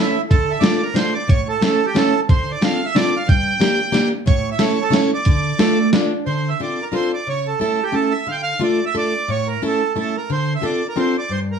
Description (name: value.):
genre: musette waltz.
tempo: 180 BPM.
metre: 3/4.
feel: swing 55% on 8ths.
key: D minor.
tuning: A4 = 440 Hz.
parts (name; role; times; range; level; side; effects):
accordion; melody; 0.0-11.6 s; E4 to G5; -21 LUFS; right 6 dB; none.
picked plugged-in steel-string acoustic guitar; accompaniment; 0.0-11.6 s; G2 to Bb4; -20 LUFS; left 2 dB; none.
lo-fi sampler-style drum kit; drums; 0.3-6.0 s; hi-hat, kick drum, snare drum; -18 LUFS; right 1 dB; none.
vintage hollow-body jazz guitar; second line; 5.6-6.2 s; A3 to D4; -18 LUFS; right 3 dB; none.
room: moderate small room reverb, RT60 0.5 s.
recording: studio ambience.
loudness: -16 LUFS.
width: side -7 dB against mid.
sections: 0.0-6.3 A section; 6.3-11.6 A section.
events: none.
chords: 0.3 Dm; 1.3 A; 2.3 Dm7; 3.3 Gm; 4.3 A; 5.3 Dm; 6.3 Dm7; 7.3 A/C#; 8.3 Dm; 9.3 A; 10.3 Dm7.